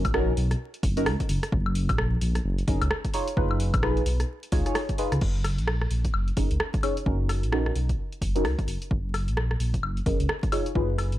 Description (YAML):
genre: UK garage, two-step garage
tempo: 130 BPM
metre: 4/4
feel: swing 60% on 16ths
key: F# major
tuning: A4 = 441 Hz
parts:
  - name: deep mellow chord stab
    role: stabs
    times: 0.0-11.2 s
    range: C#4 to C#5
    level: -29 LUFS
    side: equal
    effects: chorus, phaser, vintage 12-bit sampler grit, ping-pong delay
  - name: dark detuned saw bass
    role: bass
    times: 0.0-11.2 s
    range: F#1 to C#2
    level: -26 LUFS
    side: equal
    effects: none
  - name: electronic kick drum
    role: drums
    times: 0.0-10.9 s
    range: none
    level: -28 LUFS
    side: equal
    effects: none
  - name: punchy analog drum machine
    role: drums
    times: 0.0-11.2 s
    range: crash cymbal, hi-hat, rim click, woodblock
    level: -31 LUFS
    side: left 1 dB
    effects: none
room: light reverb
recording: dark, warm production, vinyl crackle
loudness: -24 LUFS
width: side -14 dB against mid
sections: 0.0-5.2 A section; 5.2-11.2 B section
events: drop 0.0-5.2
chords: 0.0 Bmaj9; 1.3 F#69; 3.1 C#9/F#; 5.2 F#69; 7.1 Bmaj9/F# (rootless); 8.7 F#69; 10.5 C#9